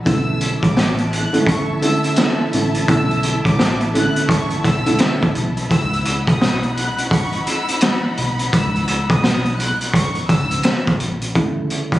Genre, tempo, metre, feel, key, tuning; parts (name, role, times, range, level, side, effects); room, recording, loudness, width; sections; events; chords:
hip hop, boom-bap hip-hop; 85 BPM; 4/4; swing 62% on 16ths; A4 = 440 Hz
warm studio string section; sustained chords; 0.0-11.3 s; D#4 to B5; -27 LUFS; equal
warm studio violin section; melody; 0.1-12.0 s; D5 to F#6; -25 LUFS; equal; low-pass filter, slapback echo
dark upright piano; accompaniment; 0.1-5.3, 11.3-12.0 s; C#3 to E4; -20 LUFS; right 1 dB; cassette tape, low-pass filter
deep dub fingered electric bass; bass; 0.1-11.3 s; A1 to C#2; -22 LUFS; equal
raw garage drum kit; drums; 0.1-12.0 s; hi-hat, kick drum, snare drum; -18 LUFS; equal; vintage 12-bit sampler grit
light reverb, small room ambience; recorded on a phone in the room, club reverb; -15 LUFS; side -15 dB against mid
0.0-11.4 A section
0.1 Bm11; 5.7 C#m11; 11.4 Dmaj7sus2/C#